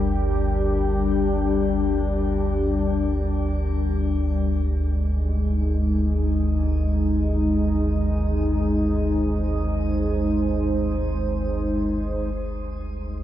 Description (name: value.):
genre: dark ambient drone.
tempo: free time.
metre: none.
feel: none.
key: unclear.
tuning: A4 = 440 Hz.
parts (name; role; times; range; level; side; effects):
dark analog pad; sustained chords; 0.0-13.2 s; G3 to C5; -24 LUFS; left 1 dB; chorus, shimmer reverb.
deep rumbling drone; drone; 0.0-13.2 s; G1 to D2; -23 LUFS; equal; built-in reverb, wide subtle chorus.
bronze singing bowl; texture; 0.0-12.4 s; G4; -45 LUFS; left 5 dB; none.
room: moderate huge ambient reverb, RT60 8.1 s.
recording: dark, warm production.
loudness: -21 LUFS.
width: side -12 dB against mid.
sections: 0.0-12.4 A section.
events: none.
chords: 0.0 Gm; 4.5 Ab; 12.4 G5.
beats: free time.